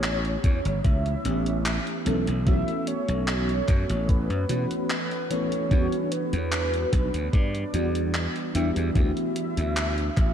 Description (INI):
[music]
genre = vaporwave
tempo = 74 BPM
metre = 4/4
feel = straight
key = E dorian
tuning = A4 = 445 Hz
[part]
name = warm velvety synth lead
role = melody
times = 0.0-10.3 s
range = B4 to E5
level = -32 LUFS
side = equal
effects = chorus, tremolo, tape echo
[part]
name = FM electric piano with soft pad layer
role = accompaniment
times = 0.0-10.3 s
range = E3 to A4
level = -28 LUFS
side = equal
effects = tremolo, ensemble chorus, cassette tape, diffuse ambient delay
[part]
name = slap bass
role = bass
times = 0.0-10.3 s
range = G1 to B2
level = -27 LUFS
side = equal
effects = none
[part]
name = gated 80s digital drum machine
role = drums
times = 0.0-10.3 s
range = handclaps, hi-hat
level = -33 LUFS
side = equal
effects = gated reverb
[part]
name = electronic kick drum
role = drums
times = 0.4-10.3 s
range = none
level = -22 LUFS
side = equal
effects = none
[sound]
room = moderate cathedral reverb, RT60 5.3 s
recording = dreamy mix soaked in reverb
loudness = -23 LUFS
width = side -9 dB against mid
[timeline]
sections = 0.0-10.3 A section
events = none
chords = 0.0 A9; 2.1 B9sus4; 5.7 Em9; 9.0 D69